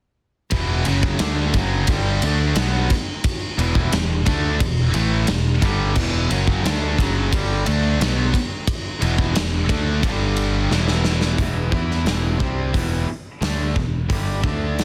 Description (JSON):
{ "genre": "hard rock", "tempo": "88 BPM", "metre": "4/4", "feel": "straight", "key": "E minor", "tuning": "A4 = 441 Hz", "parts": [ { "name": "cranked stack guitar", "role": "riff", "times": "0.5-14.8 s", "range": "E2 to E4", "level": "-30 LUFS", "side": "equal", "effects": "overdrive" }, { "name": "distorted electric guitar", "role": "riff", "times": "0.5-14.8 s", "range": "E2 to E4", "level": "-30 LUFS", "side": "equal", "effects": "overdrive" }, { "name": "heavy high-gain guitar", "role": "riff", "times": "0.5-11.4 s", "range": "E2 to D4", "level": "-29 LUFS", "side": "equal", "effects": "distortion" }, { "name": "picked electric bass", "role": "bass", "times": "0.5-14.8 s", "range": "E1 to E2", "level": "-24 LUFS", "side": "equal", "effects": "none" }, { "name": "big rock drum kit", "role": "drums", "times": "0.5-14.8 s", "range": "crash cymbal, hi-hat, kick drum, ride cymbal, snare drum", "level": "-25 LUFS", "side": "equal", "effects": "soft clipping on kick" } ], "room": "small room ambience", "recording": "dense, heavily limited modern master", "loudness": "-20 LUFS", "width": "mono", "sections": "0.5-11.4 A section; 11.4-14.8 B section", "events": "drum fill 10.7-11.4", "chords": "0.5 Em; 10.0 G5; 10.7 E5; 11.4 Em", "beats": "| 0.52 1.20 1.88 2.56 | 3.24 3.92 4.60 5.28 | 5.96 6.63 7.31 7.99 | 8.67 9.35 10.03 10.70 | 11.38 12.06 12.74 13.42 | 14.10 14.78" }